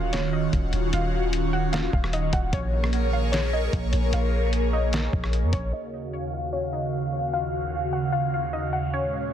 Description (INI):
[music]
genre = hip hop, atmospheric cloud-rap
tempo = 150 BPM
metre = 4/4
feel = half-time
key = unclear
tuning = A4 = 440 Hz
[part]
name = warbly dusty pluck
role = melody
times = 0.0-9.3 s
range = Db5 to Gb5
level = -31 LUFS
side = left 2 dB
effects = chorus, low-pass filter, tape echo
[part]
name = airy breathy pad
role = sustained chords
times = 0.0-9.3 s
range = Eb2 to F5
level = -27 LUFS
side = right 1 dB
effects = chorus, phaser, sidechain pumping, low-pass filter
[part]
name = warm 808-style bass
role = bass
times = 0.0-5.7 s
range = Eb1 to F2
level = -25 LUFS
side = equal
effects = none
[part]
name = lo-fi sampler-style drum kit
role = drums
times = 0.1-5.6 s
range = hi-hat, kick drum, rim click, snare drum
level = -28 LUFS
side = equal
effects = none
[sound]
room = light reverb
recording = dense, heavily limited modern master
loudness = -23 LUFS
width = side -10 dB against mid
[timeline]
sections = 0.0-5.7 A section; 5.7-9.3 B section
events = filter sweep 5.7-9.3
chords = 0.0 Ebm9; 2.5 Bbm7; 5.7 Ebm9